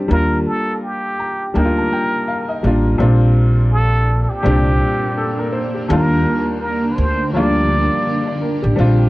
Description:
lo-fi hip hop; 83 BPM; 4/4; swing 58% on 16ths; A4 = 441 Hz
felt-muted upright piano; accompaniment; 0.0-9.1 s; Eb2 to Bb5; -19 LUFS; left 1 dB; cassette tape, low-pass filter
trumpet with plunger mute; melody; 0.1-8.4 s; G4 to D5; -22 LUFS; right 1 dB; low-pass filter, analog delay
upright bass; bass; 0.1-9.1 s; A1 to Eb2; -16 LUFS; equal
granular cloud pad; sustained chords; 4.0-9.1 s; D3 to G4; -24 LUFS; right 2 dB; built-in reverb, low-pass filter
moderate small room reverb, RT60 0.5 s; cassette tape; -14 LUFS; side -19 dB against mid
0.0-3.0 A section; 3.0-9.1 B section
0.1 Ebmaj7; 3.0 Bb69; 5.9 Ebmaj7
| 0.10 0.82 1.55 2.27 | 2.99 3.71 4.44 5.16 | 5.88 6.61 7.33 8.05 | 8.78

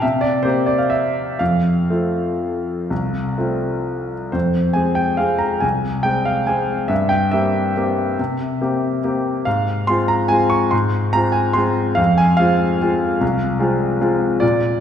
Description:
classical, piano waltz; 115-155 BPM; 3/4; rubato; F major, F minor from 4.3 s; A4 = 439 Hz
clear grand piano; solo; 0.0-14.8 s; C2 to Db6; -16 LUFS; equal
wet recital hall reverb, RT60 1.7 s; heard from further back in the room; -16 LUFS; side -9 dB against mid
0.0-4.3 A section; 4.3-14.8 B section
0.0 C7; 1.4 F; 4.3 Fm; 6.9 C7/G; 9.5 Fm/Ab; 12.0 Fm
| 0.02 0.45 0.92 | 1.40 1.90 2.42 | 2.91 3.38 3.88 | 4.34 4.77 5.21 | 5.63 6.05 6.48 | 6.90 7.33 7.77 | 8.19 8.60 9.03 | 9.46 9.88 10.31 | 10.72 11.14 11.57 | 11.98 12.39 12.81 | 13.21 13.61 14.02 | 14.42

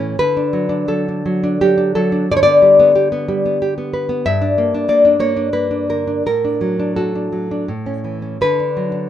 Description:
romantic piece for solo classical guitar; 82-94 BPM; 3/4; rubato; D major; A4 = 439 Hz
nylon-string guitar; solo; 0.0-9.1 s; G2 to E5; -14 LUFS; left 1 dB
light reverb; minimal, uncompressed stereo recording; -14 LUFS; side -11 dB against mid
0.2-9.1 A section
0.2 D; 2.3 G/D; 4.3 Em7b5/G; 6.2 D/A; 7.7 A; 8.4 D
| 0.18 0.88 1.58 | 2.27 2.95 3.62 | 4.26 4.90 5.55 | 6.24 6.96 7.67 | 8.39 9.08

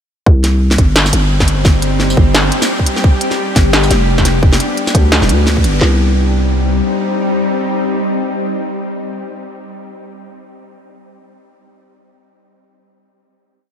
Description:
half-time drum and bass; 173 BPM; 4/4; swing 58% on 16ths, half-time; C harmonic minor; A4 = 440 Hz
bowed-like drone; sustained chords; 1.1-9.3 s; G3 to G4; -18 LUFS; left 1 dB; built-in reverb, sidechain pumping
growling 808-style bass; bass; 0.3-6.8 s; D1 to D2; -13 LUFS; equal
drum and bass drum kit; drums; 0.3-5.9 s; handclaps, kick drum, snare drum; -11 LUFS; equal
industrial drum kit; drums; 0.4-5.7 s; hi-hat, snare drum, tambourine; -16 LUFS; equal
light reverb; -11 LUFS; side -8 dB against mid
0.3-5.8 drop; 5.8-8.6 final chord
drop 0.3-5.8; band accent 5.5
0.3 Cm; 3.0 G; 5.8 Cm
| 0.26 0.61 0.96 1.30 | 1.65 2.00 2.35 2.69 | 3.04 3.39 3.73 4.08 | 4.43 4.77 5.12 5.47 | 5.81 6.16 6.51 6.85 | 7.20 7.55 7.89 8.24

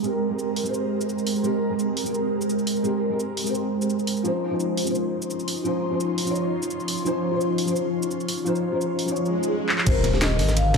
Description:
liquid drum and bass; 171 BPM; 4/4; swing 53% on 16ths; Ab major; A4 = 441 Hz
felt-muted upright piano; accompaniment; 0.0-10.8 s; F3 to Db5; -26 LUFS; left 2 dB; ensemble chorus, low-pass filter, tape echo
ethereal airy pad; sustained chords; 0.0-10.8 s; F3 to C6; -27 LUFS; right 3 dB; ensemble chorus, built-in reverb, phaser
drum and bass drum kit; drums; 0.0-10.8 s; crash cymbal, handclaps, hi-hat, shaker, snare drum; -29 LUFS; equal; overdrive
swell and impact; sound effects; 9.3-10.8 s; -28 LUFS; right 2 dB
vibraphone with medium mallets; melody; 9.9-10.8 s; C5 to F5; -26 LUFS; left 5 dB; ping-pong delay
smooth gliding synth bass; bass; 9.9-10.8 s; Eb1 to Ab1; -23 LUFS; equal; tube saturation
breakbeat sampler-style drum kit; drums; 9.9-10.8 s; ride cymbal, snare drum; -31 LUFS; equal; high-pass filter on cymbals, high-pass filter on snare, high-pass filter on hats
electronic kick drum; drums; 9.9-10.8 s; -21 LUFS; equal; overdrive
light reverb, digital ambience; -22 LUFS; side -4 dB against mid
0.0-9.9 A section
swell 9.3-9.9; drum fill 9.7; impact 9.9-10.8
0.0 Abmaj9; 4.2 Dbmaj9; 9.9 Abmaj9
| 0.04 0.39 0.74 1.09 | 1.44 1.79 2.15 2.50 | 2.85 3.20 3.55 3.90 | 4.25 4.60 4.95 5.30 | 5.65 6.00 6.36 6.71 | 7.06 7.41 7.76 8.11 | 8.46 8.81 9.16 9.51 | 9.86 10.21 10.57

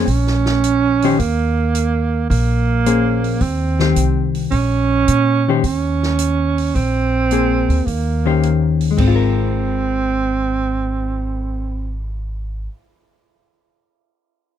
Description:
jazz, small-group swing and bop; 108 BPM; 4/4; swing 69% on 8ths; Ab major; A4 = 440 Hz
hollow-body jazz guitar; accompaniment; 0.0-12.8 s; Eb3 to C5; -19 LUFS; left 12 dB
upright bass; bass; 0.0-12.7 s; Ab1 to Bb2; -19 LUFS; equal
mellow alto saxophone; second line; 0.1-12.0 s; Bb3 to Db4; -19 LUFS; right 7 dB
open jazz drum kit; drums; 0.1-11.1 s; crash cymbal, cymbal swell, hi-hat, kick drum, snare drum; -25 LUFS; right 1 dB
little or no reverb; -15 LUFS; side -10 dB against mid
0.1-9.0 A section; 9.0-11.2 B section
0.1 Bbmadd9; 1.2 Eb5; 2.3 Bbm9; 3.4 Eb6; 4.5 Bbmadd9; 5.6 Dbsus2/Eb; 6.8 Bbsus2; 7.9 Eb6; 9.0 Ab69
| 0.08 0.63 1.19 1.75 | 2.30 2.86 3.41 3.97 | 4.53 5.08 5.64 6.20 | 6.75 7.31 7.87 8.42 | 8.98 9.53 10.09 10.65

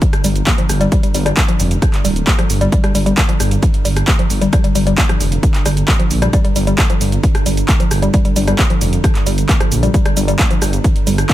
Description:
driving peak-time techno; 133 BPM; 4/4; straight; G minor; A4 = 440 Hz
metallic inharmonic drone; drone; 0.0-11.3 s; G2 to D3; -23 LUFS; right 3 dB; chorus, built-in reverb, sidechain pumping
electronic kick drum; drums; 0.0-11.3 s; -14 LUFS; equal; overdrive
punchy analog drum machine; drums; 0.0-11.3 s; handclaps, hi-hat, rim click, shaker; -20 LUFS; right 1 dB; overdrive, sidechain pumping on hats, sidechain pumping on perc
woody wave-folded pluck; riff; 0.2-11.3 s; F3 to Bb3; -20 LUFS; left 2 dB; chorus, overdrive, sidechain pumping, ping-pong delay
detuned saw bass; bass; 0.2-11.2 s; D1 to Bb1; -16 LUFS; equal; sidechain pumping
little or no reverb; -12 LUFS; side -14 dB against mid
0.0-11.3 A section
0.0 G5
0.02 0.47 | 0.92 1.37 1.82 2.27 | 2.72 3.17 3.62 4.08 | 4.53 4.98 5.43 5.88 | 6.33 6.78 7.23 7.68 | 8.14 8.59 9.04 9.49 | 9.94 10.39 10.84 11.29

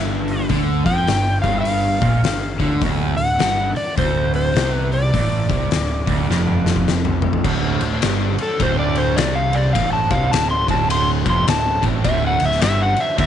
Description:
blues rock power trio and southern rock; 104 BPM; 4/4; swing 62% on 8ths; D mixolydian; A4 = 440 Hz
overdriven slide guitar; melody; 0.0-13.3 s; A4 to C6; -21 LUFS; left 1 dB
overdriven semi-hollow guitar; riff; 0.0-13.3 s; D2 to F3; -21 LUFS; right 2 dB
fuzz picked electric bass; bass; 0.0-13.3 s; D1 to F2; -23 LUFS; right 1 dB; overdrive
oversized low-tuned drum kit; drums; 0.3-13.3 s; crash cymbal, hi-hat, kick drum, ride cymbal, snare drum, toms; -22 LUFS; left 4 dB
overdriven tonewheel organ; sustained chords; 7.4-13.3 s; F#3 to C5; -30 LUFS; right 12 dB; chorus vibrato, slow rotary speaker
light reverb, small room ambience; 1960s-style stereo, nothing above 10.9 kHz; -16 LUFS; side -9 dB against mid
0.0-7.5 A section; 7.5-13.3 B section
drum fill 6.3-7.5; electric slide guitar solo 7.5-13.3
0.0 N.C.; 0.5 G5; 2.8 D7(no3); 7.5 D7
| 0.50 1.08 1.66 2.24 | 2.82 3.40 3.98 4.56 | 5.14 5.72 6.29 6.87 | 7.45 8.03 8.60 9.18 | 9.75 10.33 10.90 11.47 | 12.04 12.62 13.19

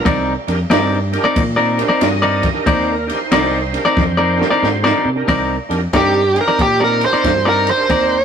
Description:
electric blues shuffle; 92 BPM; 4/4; swing 65% on 8ths; C minor; A4 = 440 Hz
overdriven tonewheel organ; accompaniment; 0.0-7.9 s; D4 to Eb5; -23 LUFS; right 3 dB; slow rotary speaker, chorus vibrato
clean electric guitar; riff; 0.1-8.2 s; C4 to D5; -16 LUFS; left 2 dB
fingered electric bass; bass; 0.1-8.2 s; C2 to C3; -22 LUFS; equal
compact cocktail drum kit; drums; 0.1-8.1 s; kick drum, ride cymbal, snare drum; -21 LUFS; equal
dark smooth lead guitar; melody; 6.0-8.2 s; G4 to C5; -14 LUFS; right 2 dB; overdrive
moderate stone room reverb, RT60 1.4 s; rough rehearsal-room recording, tube saturation; -13 LUFS; side -7 dB against mid
0.0-5.3 A section; 5.3-8.2 B section
drum fill 4.0-5.3
0.1 Cm9
| 0.06 0.71 1.36 2.01 | 2.66 3.32 3.97 4.62 | 5.28 5.93 6.58 7.24 | 7.89

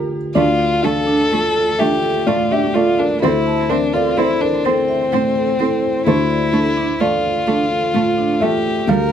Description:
neoclassical piano and strings; 42 BPM (dotted quarters); 6/8; rubato; D minor; A4 = 440 Hz
felt-muted upright piano; accompaniment; 0.0-9.1 s; D2 to F5; -18 LUFS; equal
vibraphone with medium mallets; arpeggios; 0.3-9.0 s; D4 to A5; -24 LUFS; right 5 dB; tape echo
rich violin; melody; 0.4-9.1 s; C4 to Bb4; -18 LUFS; left 2 dB
clear cello; second line; 0.4-9.0 s; G3 to C4; -24 LUFS; right 4 dB; tape echo
light reverb; -14 LUFS; side -9 dB against mid
0.4-9.1 A section
0.4 Dm; 3.2 Am/D; 6.1 Dm
| 0.35 1.79 | 3.22 4.64 | 6.06 7.47 | 8.88

